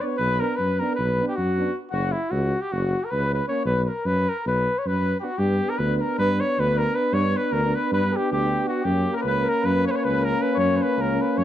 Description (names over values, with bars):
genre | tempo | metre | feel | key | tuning
balkan folk | 312 BPM (eighths) | 9/8 | straight | unclear | A4 = 441 Hz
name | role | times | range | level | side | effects
warm cornet | melody | 0.0-11.4 s | E4 to D5 | -25 LUFS | right 1 dB | slapback echo
warm flugelhorn | second line | 0.0-11.4 s | E4 to C#5 | -30 LUFS | left 8 dB | none
mellow euphonium | accompaniment | 0.0-11.4 s | A#3 to B3 | -30 LUFS | right 6 dB | none
warm euphonium | accompaniment | 0.0-11.4 s | C#4 to D4 | -29 LUFS | left 5 dB | none
mellow tuba | bass | 0.2-11.4 s | F#1 to G2 | -24 LUFS | equal | none
room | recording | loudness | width
studio reverb | dry, close 1970s-style studio recording | -21 LUFS | side -11 dB against mid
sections
0.0-5.4 A section; 5.4-11.4 B section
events
none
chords
0.0 Bm; 1.9 F#5; 3.7 B5; 5.4 G; 8.8 F#